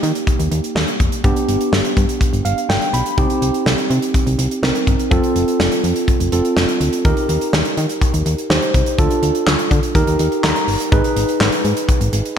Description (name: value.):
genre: synth-pop.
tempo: 124 BPM.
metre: 4/4.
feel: straight.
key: unclear.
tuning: A4 = 440 Hz.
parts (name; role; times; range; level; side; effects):
tine electric piano; accompaniment; 0.0-12.4 s; Bb3 to B5; -19 LUFS; right 2 dB; slapback echo.
solid FM bass; bass; 0.0-12.2 s; F1 to Eb3; -19 LUFS; left 1 dB; none.
modern studio drum kit; drums; 0.0-12.4 s; handclaps, hi-hat, kick drum, snare drum; -18 LUFS; equal; none.
room: moderate lush hall reverb, RT60 2.0 s, small room ambience.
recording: big arena sound.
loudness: -14 LUFS.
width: side -8 dB against mid.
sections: 0.0-10.9 A section; 10.9-12.4 B section.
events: tine electric piano fill 2.2-3.2, 10.2-10.9.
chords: 0.0 Eb; 1.2 G; 3.2 Cm; 5.1 F; 7.0 Eb; 9.0 Dm; 10.0 Eb; 10.9 G#m.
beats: 0.28 0.76 | 1.24 1.73 2.21 2.69 | 3.18 3.66 4.15 4.63 | 5.11 5.60 6.08 6.57 | 7.05 7.53 8.02 8.50 | 8.98 9.47 9.95 10.44 | 10.92 11.40 11.89 12.37.